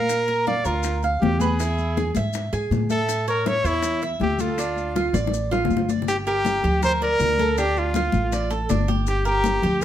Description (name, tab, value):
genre	latin, Cuban son and guajira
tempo	160 BPM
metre	4/4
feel	straight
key	D minor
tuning	A4 = 441 Hz
part	clear trumpet	melody	0.0-9.8 s	E4 to D5	-23 LUFS	equal	slapback echo
part	Cuban tres	arpeggios	0.0-9.8 s	D4 to F5	-27 LUFS	right 3 dB	none
part	upright bass	bass	0.0-9.8 s	G1 to Bb2	-26 LUFS	equal	none
part	bongos	percussion	0.1-9.8 s	none	-30 LUFS	left 7 dB	none
part	congas	percussion	0.1-9.8 s	none	-28 LUFS	left 4 dB	none
part	maracas	percussion	0.1-9.8 s	none	-38 LUFS	left 6 dB	none
room	moderate studio reverb, RT60 0.8 s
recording	none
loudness	-20 LUFS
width	side -11 dB against mid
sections	0.0-6.1 A section; 6.1-9.8 B section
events	drum fill 5.2-6.1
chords	0.1 Bb; 1.6 E; 3.1 A; 4.6 Dm; 6.1 Gm; 7.6 Dm; 9.1 Gm